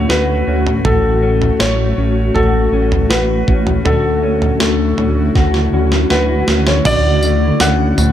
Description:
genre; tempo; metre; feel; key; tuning
dream pop; 80 BPM; 4/4; straight; unclear; A4 = 444 Hz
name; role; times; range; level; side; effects
felt-muted upright piano; melody; 0.0-8.1 s; A4 to F#5; -18 LUFS; equal; tape echo
granular cloud pad; sustained chords; 0.0-8.1 s; D3 to A4; -20 LUFS; left 1 dB; built-in reverb
mellow electric guitar; arpeggios; 0.0-8.1 s; A2 to F#4; -19 LUFS; left 3 dB; ensemble chorus, tape echo
fat analog bass; bass; 0.0-8.1 s; A1 to D2; -17 LUFS; equal; none
clean 12-bit digital drum machine; drums; 0.1-8.1 s; crash cymbal, kick drum, snare drum, tambourine, toms; -17 LUFS; right 1 dB; none
room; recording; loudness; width
light reverb; none; -12 LUFS; side -11 dB against mid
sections
0.0-6.9 A section; 6.9-8.1 B section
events
drum fill 5.4-6.9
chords
0.0 Dmaj7; 0.9 A6; 3.9 Dmaj7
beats
0.10 | 0.85 1.60 2.35 3.10 | 3.85 4.60 5.35 6.10 | 6.85 7.60

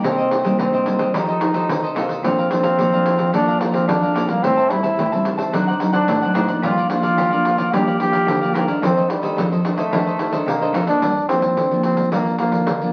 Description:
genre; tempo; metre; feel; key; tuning
samba and choro; 109 BPM; 4/4; straight; unclear; A4 = 440 Hz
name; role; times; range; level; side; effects
bright trombone; melody; 0.0-12.9 s; G3 to G4; -22 LUFS; equal; none
cavaquinho; accompaniment; 0.0-11.0 s; D4 to Bb5; -29 LUFS; equal; none
nylon-string guitar; accompaniment; 0.0-12.9 s; F2 to G4; -25 LUFS; equal; none
rich cello; bass; 0.0-12.9 s; F2 to G3; -29 LUFS; equal; none
pandeiro; percussion; 0.0-12.9 s; none; -27 LUFS; equal; none
room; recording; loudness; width
wet studio reverb, RT60 0.7 s; very old 78 rpm record, vinyl crackle; -19 LUFS; mono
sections
0.0-11.0 A section; 11.0-12.9 B section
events
none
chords
0.0 Cm7; 1.1 F9; 2.2 Bbmaj7; 4.4 Am7; 5.5 D7b9; 6.6 Gm7; 8.8 F6; 11.0 Gm7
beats
| 0.04 0.59 1.14 1.69 | 2.24 2.79 3.34 3.88 | 4.43 4.98 5.53 6.08 | 6.63 7.18 7.73 8.28 | 8.83 9.38 9.92 10.47 | 11.02 11.57 12.12 12.67

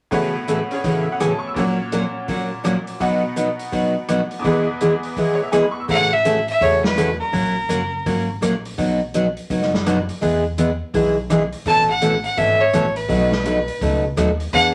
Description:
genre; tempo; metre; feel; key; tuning
country, western swing; 166 BPM; 4/4; swing 62% on 8ths; A major; A4 = 438 Hz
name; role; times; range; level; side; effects
picked steel-string acoustic guitar; accompaniment; 0.1-14.7 s; A2 to A#4; -22 LUFS; equal; none
tack piano; accompaniment; 0.1-5.9 s; E2 to E6; -27 LUFS; equal; none
swinging big-band drum kit; drums; 0.1-14.6 s; hi-hat, kick drum, rim click, snare drum; -32 LUFS; equal; none
clear fiddle; melody; 5.9-8.2, 11.7-14.7 s; Bb4 to A5; -21 LUFS; equal; none
upright bass; bass; 5.9-14.7 s; F#1 to E2; -30 LUFS; equal; none
room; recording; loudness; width
wet studio reverb, RT60 0.5 s; none; -20 LUFS; mono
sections
0.1-5.9 A section; 5.9-14.7 B section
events
none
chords
0.1 A6; 1.6 F#/A#; 3.0 B; 4.4 E; 5.9 A6; 7.3 F#; 8.8 B; 10.2 E; 11.7 Aadd9; 13.1 B7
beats
| 0.12 0.48 0.84 1.20 | 1.56 1.92 2.28 2.64 | 3.00 3.37 3.73 4.09 | 4.45 4.81 5.17 5.53 | 5.89 6.25 6.61 6.97 | 7.33 7.70 8.06 8.42 | 8.78 9.14 9.50 9.86 | 10.22 10.58 10.94 11.30 | 11.66 12.02 12.38 12.74 | 13.10 13.46 13.82 14.18 | 14.54

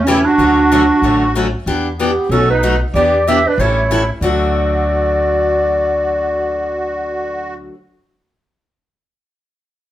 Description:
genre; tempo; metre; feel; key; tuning
acoustic string swing (jazz manouche); 188 BPM; 4/4; swing 60% on 8ths; D major; A4 = 440 Hz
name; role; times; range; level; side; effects
breathy clarinet; melody; 0.0-7.5 s; C#4 to E5; -15 LUFS; right 1 dB; none
musette accordion; second line; 0.0-7.5 s; B3 to G4; -21 LUFS; right 2 dB; none
upright bass; bass; 0.0-7.7 s; A1 to E2; -21 LUFS; equal; none
picked steel-string acoustic guitar; accompaniment; 0.1-7.8 s; B2 to A4; -19 LUFS; left 3 dB; none
room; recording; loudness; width
light reverb; band playing live in one room; -13 LUFS; side -13 dB against mid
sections
0.0-1.7 A section; 1.7-4.2 B section; 4.2-6.8 C section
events
none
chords
0.4 Dmaj7; 1.7 Em7; 2.3 B7; 2.9 Em7; 3.6 A7; 4.2 D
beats
0.06 | 0.38 0.70 1.02 1.34 | 1.66 1.98 2.30 2.62 | 2.94 3.26 3.58 3.90 | 4.22 4.54 4.86 5.18 | 5.50 5.82 6.14 6.46

